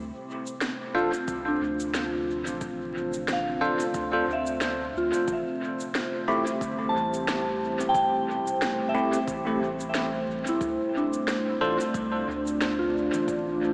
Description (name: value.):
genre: ambient dub.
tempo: 90 BPM.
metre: 4/4.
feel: swing 57% on 16ths.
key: D minor.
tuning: A4 = 442 Hz.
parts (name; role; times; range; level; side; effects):
deep dark ambient pad; sustained chords; 0.0-13.7 s; A3 to C5; -30 LUFS; equal; chorus, built-in reverb.
soft dub sub bass; bass; 0.0-13.7 s; E1 to D2; -41 LUFS; equal; none.
electronic shaker and snare drum; drums; 0.5-13.4 s; none; -34 LUFS; equal; dub echo.
bell-like tine electric piano; stabs; 0.9-11.8 s; A3 to C5; -30 LUFS; equal; phaser, dub echo.
soft synth bell; arpeggios; 1.0-13.7 s; D4 to A5; -29 LUFS; equal; chorus, tape echo.
electronic kick drum; drums; 1.3-13.4 s; none; -38 LUFS; equal; none.
room: wet huge ambient reverb, RT60 4.5 s.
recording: dreamy mix soaked in reverb, vinyl crackle, small speaker sound.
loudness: -24 LUFS.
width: side -30 dB against mid.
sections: 0.0-13.7 A section.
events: none.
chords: 0.0 Dm7; 5.3 Am7; 10.6 Dm7.